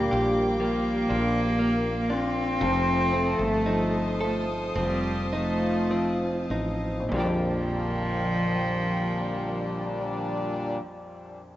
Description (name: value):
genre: pop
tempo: 48-62 BPM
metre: 4/4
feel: straight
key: Bb major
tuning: A4 = 439 Hz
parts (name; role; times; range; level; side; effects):
- warm cello; melody; 0.0-10.8 s; F3 to C4; -28 LUFS; equal; none
- warm French horn section; second line; 0.0-10.8 s; Bb2 to A4; -31 LUFS; left 1 dB; analog delay
- clear grand piano; accompaniment; 0.0-11.6 s; Bb1 to F4; -33 LUFS; left 2 dB; none
- warm studio string section; sustained chords; 0.0-10.8 s; Bb3 to Eb6; -36 LUFS; equal; none
- direct-recorded clean electric guitar; arpeggios; 0.0-10.9 s; Bb2 to A4; -32 LUFS; right 1 dB; none
- woody fretless electric bass; bass; 0.0-10.8 s; F1 to Bb1; -32 LUFS; equal; none
room: moderate studio reverb, RT60 0.6 s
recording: rough home demo mix, nothing above 7.7 kHz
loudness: -24 LUFS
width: side -14 dB against mid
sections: 0.0-7.1 A section; 7.1-11.6 B section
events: slowing down 0.0-7.1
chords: 0.0 Bb6; 2.6 F7; 7.1 Bb6